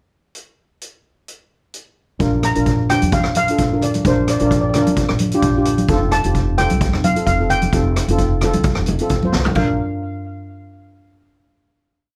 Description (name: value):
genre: calypso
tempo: 130 BPM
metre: 4/4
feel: swing 53% on 16ths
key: Bb major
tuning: A4 = 435 Hz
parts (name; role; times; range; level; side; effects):
- street-band drum kit; drums; 0.3-9.7 s; crash cymbal, hi-hat, kick drum, rim click, snare drum, toms; -24 LUFS; equal; none
- steel pan; accompaniment; 2.2-9.8 s; C4 to C5; -23 LUFS; equal; none
- upright bass; bass; 2.2-9.8 s; F1 to F2; -23 LUFS; equal; none
- steel pan; melody; 2.4-9.8 s; C5 to Bb5; -24 LUFS; equal; tape echo
- congas; percussion; 2.9-9.8 s; none; -25 LUFS; equal; none
room: moderate studio reverb, RT60 0.6 s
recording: none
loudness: -17 LUFS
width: mono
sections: 0.4-2.2 pickup bar; 2.2-9.6 verse; 9.6-11.4 final chord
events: drum fill 9.3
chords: 0.4 N.C.; 2.2 Bb; 5.9 Fadd9; 9.6 Bb